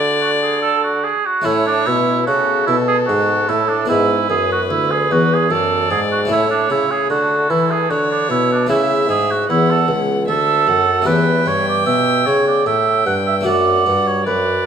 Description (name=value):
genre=classical, baroque-style sonata movement with continuo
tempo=75 BPM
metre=3/4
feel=rubato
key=A major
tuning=A4 = 440 Hz
part: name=rich violin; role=melody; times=0.0-14.7 s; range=A4 to G5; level=-24 LUFS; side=left 7 dB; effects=none
part: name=warm oboe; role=second line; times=0.0-14.7 s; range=D4 to F#5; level=-17 LUFS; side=right 6 dB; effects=none
part: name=harpsichord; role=accompaniment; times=0.0-14.7 s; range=C#2 to G4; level=-20 LUFS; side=left 3 dB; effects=none
part: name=mellow bassoon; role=bass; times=0.0-14.7 s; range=C#2 to E3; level=-20 LUFS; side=right 1 dB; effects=none
room=moderate concert hall reverb, RT60 2.3 s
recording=close, detailed microphones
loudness=-14 LUFS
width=side -8 dB against mid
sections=0.0-1.5 A section; 1.5-14.7 A section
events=none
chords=0.0 D; 1.5 A; 3.9 E; 6.3 A; 11.1 A7/E; 13.5 D/F#